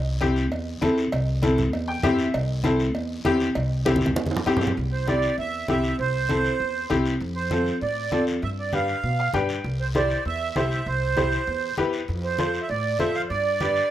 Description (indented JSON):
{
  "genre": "latin, cumbia",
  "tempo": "197 BPM",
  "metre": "4/4",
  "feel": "straight",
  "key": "C major",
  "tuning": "A4 = 438 Hz",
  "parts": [
    { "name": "upright bass", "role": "bass", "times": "0.0-13.8 s", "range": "C2 to B2", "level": "-28 LUFS", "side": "equal", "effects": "none" },
    { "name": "bright upright piano", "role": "accompaniment", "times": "0.2-13.8 s", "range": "C4 to G5", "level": "-25 LUFS", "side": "left 2 dB", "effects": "plate reverb" },
    { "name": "congas", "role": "percussion", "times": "0.2-13.8 s", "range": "none", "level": "-29 LUFS", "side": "right 1 dB", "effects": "none" },
    { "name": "cowbell and timbales", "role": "percussion", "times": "0.2-4.7 s", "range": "none", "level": "-33 LUFS", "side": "right 3 dB", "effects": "none" },
    { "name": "guiro", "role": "percussion", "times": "0.2-13.9 s", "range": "none", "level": "-38 LUFS", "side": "left 4 dB", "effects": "none" },
    { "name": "accordion", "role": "melody", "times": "4.9-13.9 s", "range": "C5 to F5", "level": "-26 LUFS", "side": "right 4 dB", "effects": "light tremolo tuning, plate reverb" }
  ],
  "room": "moderate studio reverb, RT60 0.6 s",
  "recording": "rough home demo mix",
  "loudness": "-22 LUFS",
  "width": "side -12 dB against mid",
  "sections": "0.0-4.8 A section; 4.8-13.9 B section",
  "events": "upright piano fill 1.7-2.3, 9.0-9.6; drum fill 3.9-4.8",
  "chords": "0.0 C; 7.2 F; 8.4 G7; 9.6 C; 12.1 F; 13.3 G"
}